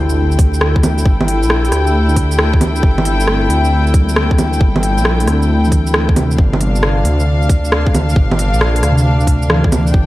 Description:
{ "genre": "future garage", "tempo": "135 BPM", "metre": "4/4", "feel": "swing 67% on 16ths", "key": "G dorian", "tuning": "A4 = 440 Hz", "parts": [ { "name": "muted felt-like synth keys", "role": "accompaniment", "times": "0.0-10.1 s", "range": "Bb2 to A4", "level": "-21 LUFS", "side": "equal", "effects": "chorus, sidechain pumping, analog delay" }, { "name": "dark studio string section", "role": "sustained chords", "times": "0.0-10.1 s", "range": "D4 to G5", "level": "-20 LUFS", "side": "left 2 dB", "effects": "sidechain pumping" }, { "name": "dark detuned saw bass", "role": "bass", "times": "0.0-10.1 s", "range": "G1 to D2", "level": "-15 LUFS", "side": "equal", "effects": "sidechain pumping" }, { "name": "impact", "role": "sound effects", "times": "0.0-1.1 s", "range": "none", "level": "-32 LUFS", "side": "equal", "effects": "none" }, { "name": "organic electronic drum kit", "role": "drums", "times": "0.1-9.9 s", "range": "bongos, hi-hat, rim click, shaker", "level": "-18 LUFS", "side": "right 1 dB", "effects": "none" }, { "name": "electronic kick drum", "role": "drums", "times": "0.4-10.1 s", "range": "none", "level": "-12 LUFS", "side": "equal", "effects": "none" } ], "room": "light reverb, digital ambience", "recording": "dark, warm production, vinyl crackle", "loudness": "-11 LUFS", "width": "side -17 dB against mid", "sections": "0.0-10.1 A section", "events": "impact 0.0-1.1", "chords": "0.0 Gm69; 6.4 Bb/G", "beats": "0.16 0.61 | 1.05 1.50 1.94 2.39 | 2.83 3.27 3.72 4.16 | 4.61 5.05 5.50 5.94 | 6.39 6.83 7.28 7.72 | 8.16 8.61 9.05 9.50 | 9.94" }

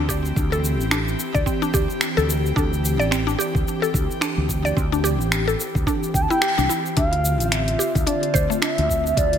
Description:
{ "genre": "organic downtempo", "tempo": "109 BPM", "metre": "4/4", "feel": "swing 58% on 16ths", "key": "unclear", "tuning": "A4 = 438 Hz", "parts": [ { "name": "airy breathy pad", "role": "sustained chords", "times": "0.0-9.4 s", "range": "D3 to G4", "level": "-27 LUFS", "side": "equal", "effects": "chorus, sidechain pumping" }, { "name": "mallet-like synth pluck", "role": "arpeggios", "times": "0.0-9.2 s", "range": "A3 to D5", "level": "-25 LUFS", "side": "left 1 dB", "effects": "chorus, digital delay" }, { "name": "mellow fretless electric bass", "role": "bass", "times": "0.0-9.4 s", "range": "A1 to D2", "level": "-23 LUFS", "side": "equal", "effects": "wide subtle chorus, sidechain pumping" }, { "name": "deep house drum kit", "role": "drums", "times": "0.1-9.4 s", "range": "finger snaps, hi-hat, shaker", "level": "-26 LUFS", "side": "equal", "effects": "none" }, { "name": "electronic kick drum", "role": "drums", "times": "0.1-9.3 s", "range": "none", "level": "-24 LUFS", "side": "equal", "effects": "none" }, { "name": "bass bansuri", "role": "melody", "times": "6.1-9.4 s", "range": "D5 to A5", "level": "-23 LUFS", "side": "right 1 dB", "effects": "digital delay" } ], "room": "light reverb, digital ambience", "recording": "none", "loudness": "-19 LUFS", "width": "side -8 dB against mid", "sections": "0.0-7.0 A section; 7.0-9.4 B section", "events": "band accent 6.4", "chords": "0.0 C; 7.0 Dm7", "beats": "| 0.36 0.91 1.46 2.02 | 2.56 3.12 3.67 4.22 | 4.77 5.32 5.87 6.42 | 6.97 7.52 8.07 8.62 | 9.17" }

